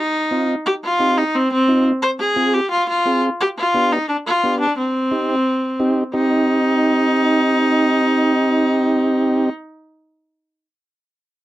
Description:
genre	latin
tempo	175 BPM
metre	4/4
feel	straight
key	C harmonic minor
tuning	A4 = 440 Hz
part	clear viola	melody	0.0-9.5 s	C4 to C5	-18 LUFS	equal	none
part	combo organ	accompaniment	0.3-9.5 s	B3 to Ab4	-17 LUFS	right 1 dB	none
room	moderate booth ambience, RT60 0.2 s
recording	dry, close 1970s-style studio recording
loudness	-15 LUFS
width	side -14 dB against mid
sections	0.0-6.1 A section; 6.1-8.9 B section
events	none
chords	0.0 Cm; 2.0 Fm; 3.4 G7; 4.8 Cm

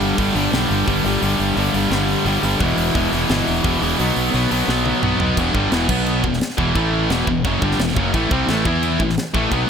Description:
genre	heavy metal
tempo	174 BPM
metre	4/4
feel	straight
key	E minor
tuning	A4 = 440 Hz
part	fuzz guitar	riff	0.0-9.7 s	E2 to E4	-23 LUFS	right 1 dB	distortion
part	heavy high-gain guitar	riff	0.0-9.7 s	E2 to E4	-22 LUFS	left 11 dB	distortion
part	heavy high-gain guitar	riff	0.0-9.7 s	E2 to E4	-22 LUFS	right 12 dB	distortion
part	fuzz fingered electric bass	bass	0.0-9.7 s	E1 to E2	-23 LUFS	equal	overdrive
part	tight metal drum kit	drums	0.0-9.6 s	crash cymbal, hi-hat, kick drum, snare drum, toms	-25 LUFS	equal	none
room	small room ambience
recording	none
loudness	-16 LUFS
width	side -7 dB against mid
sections	0.0-5.4 A section; 5.4-9.7 B section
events	half time 0.0-5.4; drum fill 4.7-5.4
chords	0.0 G5; 2.6 E5; 4.0 B5; 5.4 Em; 5.9 B5; 6.2 E5; 6.8 A5; 7.1 Em; 8.1 A5; 8.7 E5; 9.0 A5

